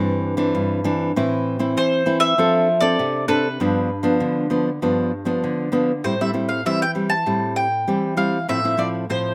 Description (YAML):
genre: samba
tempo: 98 BPM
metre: 4/4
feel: straight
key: A minor from 6.0 s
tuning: A4 = 442 Hz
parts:
  - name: nylon-string guitar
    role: accompaniment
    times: 0.0-9.3 s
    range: G2 to A4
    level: -22 LUFS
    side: equal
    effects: none
  - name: mandolin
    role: melody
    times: 1.8-9.3 s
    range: B4 to A5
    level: -23 LUFS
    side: equal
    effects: none
room: little or no reverb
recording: recorded outdoors, with no room sound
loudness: -21 LUFS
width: mono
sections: 0.0-6.0 A section; 6.0-9.3 B section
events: none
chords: 0.0 Cadd9/G; 1.2 Am; 2.4 F6; 3.6 G7; 6.0 Am7; 8.5 Fmaj7/A